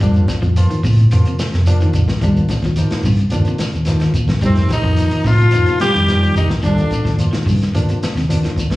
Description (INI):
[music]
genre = afrobeat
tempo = 109 BPM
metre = 4/4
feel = straight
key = unclear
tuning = A4 = 445 Hz
[part]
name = barky tine electric piano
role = accompaniment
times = 0.0-8.5 s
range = F3 to F4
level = -27 LUFS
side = right 1 dB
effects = slapback echo
[part]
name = electric guitar at the edge of break-up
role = arpeggios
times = 0.0-8.6 s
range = C3 to G3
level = -22 LUFS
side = left 2 dB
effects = analog chorus
[part]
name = fingered electric bass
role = bass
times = 0.0-8.7 s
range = Eb2 to A2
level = -15 LUFS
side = equal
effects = none
[part]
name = crunchy breakbeat drum kit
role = drums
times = 0.0-8.8 s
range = hi-hat, kick drum, snare drum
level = -22 LUFS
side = equal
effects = none
[part]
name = shekere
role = percussion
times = 0.0-8.8 s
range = none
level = -26 LUFS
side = right 1 dB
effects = none
[part]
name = congas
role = percussion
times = 0.3-8.8 s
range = none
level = -24 LUFS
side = equal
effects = slapback echo
[part]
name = growling tenor saxophone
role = melody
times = 4.4-7.2 s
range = C4 to G4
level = -19 LUFS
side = left 2 dB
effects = slapback echo
[part]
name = mellow trombone section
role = second line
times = 4.4-7.2 s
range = C3 to G3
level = -24 LUFS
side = equal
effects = slapback echo
[part]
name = clear trumpet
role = second line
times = 4.5-7.2 s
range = C4 to G4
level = -31 LUFS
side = right 5 dB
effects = slapback echo
[sound]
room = studio reverb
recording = live gig heard through the venue's PA, club reverb, small room ambience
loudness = -13 LUFS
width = side -18 dB against mid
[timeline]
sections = 0.0-8.8 A section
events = none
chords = 0.0 Fsus4; 2.2 Ebmaj7; 4.4 F7sus4; 6.6 Ebmaj7